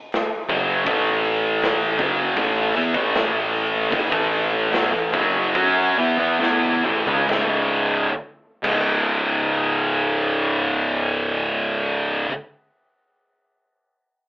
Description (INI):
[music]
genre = stoner and doom metal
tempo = 66-81 BPM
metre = 4/4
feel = straight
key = C# minor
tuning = A4 = 440 Hz
[part]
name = big rock drum kit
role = drums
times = 0.1-8.9 s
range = crash cymbal, hi-hat, kick drum, snare drum, toms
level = -26 LUFS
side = equal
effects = none
[part]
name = fuzz guitar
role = riff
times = 0.5-12.3 s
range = C#2 to F#4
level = -27 LUFS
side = left 1 dB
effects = distortion
[part]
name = heavy high-gain guitar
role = riff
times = 0.5-12.3 s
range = C#2 to F#4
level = -22 LUFS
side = equal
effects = distortion
[part]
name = thick fuzz guitar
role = riff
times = 0.5-12.3 s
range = C#2 to F#4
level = -22 LUFS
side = right 1 dB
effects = distortion
[part]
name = growling fingered electric bass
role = bass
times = 0.5-12.2 s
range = C#1 to F#2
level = -33 LUFS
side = equal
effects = overdrive
[sound]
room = moderate studio reverb, RT60 0.5 s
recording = band playing live in one room, telephone sound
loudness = -18 LUFS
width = side -25 dB against mid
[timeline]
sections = 0.0-7.3 A section; 7.3-10.9 B section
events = slowing down 0.9-7.3; drum fill 6.4-7.3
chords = 0.0 N.C.; 0.9 A5; 7.3 C#5